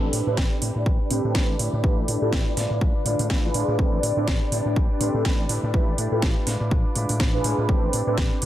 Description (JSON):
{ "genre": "filtered disco house", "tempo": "123 BPM", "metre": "4/4", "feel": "swing 56% on 16ths", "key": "A minor", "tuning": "A4 = 442 Hz", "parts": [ { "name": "mellow synth brass", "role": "accompaniment", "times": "0.0-8.2 s", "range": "C4 to B4", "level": "-28 LUFS", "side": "right 2 dB", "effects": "chorus, phaser, sidechain pumping, low-pass filter" }, { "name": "string machine, full ensemble", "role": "sustained chords", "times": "0.0-8.5 s", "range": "D4 to D5", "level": "-30 LUFS", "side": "left 1 dB", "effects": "phaser, ensemble chorus, sidechain pumping, low-pass filter" }, { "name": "direct-recorded clean electric guitar", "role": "riff", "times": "0.0-8.5 s", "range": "G#3 to B4", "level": "-32 LUFS", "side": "equal", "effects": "sidechain pumping, low-pass filter" }, { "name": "vintage slap bass", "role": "bass", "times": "0.0-8.5 s", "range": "A1 to A2", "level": "-27 LUFS", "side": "equal", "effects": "sidechain pumping, low-pass filter" }, { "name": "house drum kit", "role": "drums", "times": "0.1-8.5 s", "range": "hi-hat, snare drum", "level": "-29 LUFS", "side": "right 1 dB", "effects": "sidechain pumping on hats" }, { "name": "electronic kick drum", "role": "drums", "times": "0.4-8.3 s", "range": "none", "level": "-23 LUFS", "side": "equal", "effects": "none" } ], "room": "little or no reverb", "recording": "none", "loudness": "-20 LUFS", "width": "side -13 dB against mid", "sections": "0.0-8.5 A section", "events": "filter sweep 0.0-8.5", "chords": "0.0 Am11; 1.6 Fmaj9#11/A; 2.6 E7b9/A; 3.8 Am11; 5.5 Fmaj9#11/A; 6.5 E7b9/A; 7.7 Am11" }